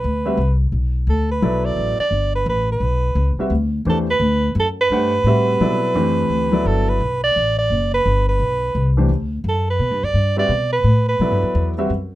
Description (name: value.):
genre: jazz.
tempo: 172 BPM.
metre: 4/4.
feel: swing 62% on 8ths.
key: G major.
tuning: A4 = 442 Hz.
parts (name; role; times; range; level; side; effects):
warm soprano saxophone; melody; 0.0-11.7 s; A4 to D5; -20 LUFS; right 2 dB; none.
upright bass; bass; 0.0-12.2 s; F#1 to B2; -19 LUFS; left 1 dB; none.
warm concert grand piano; accompaniment; 0.3-11.9 s; E3 to F#5; -20 LUFS; left 1 dB; none.
room: little or no reverb.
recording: close, detailed microphones.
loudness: -16 LUFS.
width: side -15 dB against mid.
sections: 0.0-12.2 A section.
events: none.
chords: 0.0 Gmaj9.